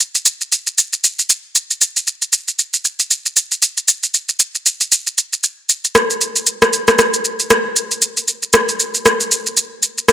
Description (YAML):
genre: amapiano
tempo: 116 BPM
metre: 4/4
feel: swing 58% on 16ths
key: none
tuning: none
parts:
  - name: electronic shaker and rim click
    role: drums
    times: 0.0-10.1 s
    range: none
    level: -12 LUFS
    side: equal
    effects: overdrive
room: moderate lush hall reverb, RT60 2.0 s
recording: dry, gritty hardware recording, transformer saturation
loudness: -13 LUFS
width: side -11 dB against mid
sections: 0.0-10.1 A section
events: none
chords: none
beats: 0.00 0.52 1.04 | 1.55 2.07 2.59 3.11 | 3.62 4.14 4.66 5.17 | 5.69 6.21 6.73 7.24 | 7.76 8.28 8.79 9.31 | 9.83